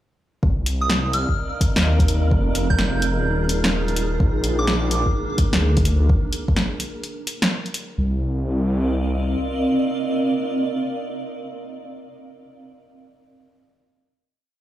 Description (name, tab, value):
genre	future garage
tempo	127 BPM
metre	4/4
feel	swing 64% on 16ths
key	C minor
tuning	A4 = 441 Hz
part	granular cloud pad	sustained chords	1.1-12.1 s	Bb3 to F5	-26 LUFS	right 1 dB	built-in reverb, sidechain pumping
part	swelling detuned saw bass	bass	0.4-9.4 s	Eb1 to Eb2	-21 LUFS	equal	tube saturation, sidechain pumping
part	electronic kick drum	drums	0.4-6.5 s	none	-20 LUFS	equal	none
part	wind-like tuned noise texture	texture	1.1-8.0 s	Bb4	-34 LUFS	right 3 dB	built-in reverb
part	deep house drum kit	drums	0.7-7.9 s	hi-hat, snare drum	-23 LUFS	equal	none
part	soft synth bell	melody	0.8-4.8 s	D6 to G6	-28 LUFS	right 2 dB	chorus, phaser, digital delay
room	moderate lush hall reverb, RT60 1.9 s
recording	played on a big sound system in a bare room, large studio reverb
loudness	-19 LUFS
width	side -13 dB against mid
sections	0.4-8.0 groove; 8.0-11.8 final chord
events	none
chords	0.4 Cm11; 2.3 Fm9; 4.2 Bb7; 6.1 N.C.; 8.0 Cm11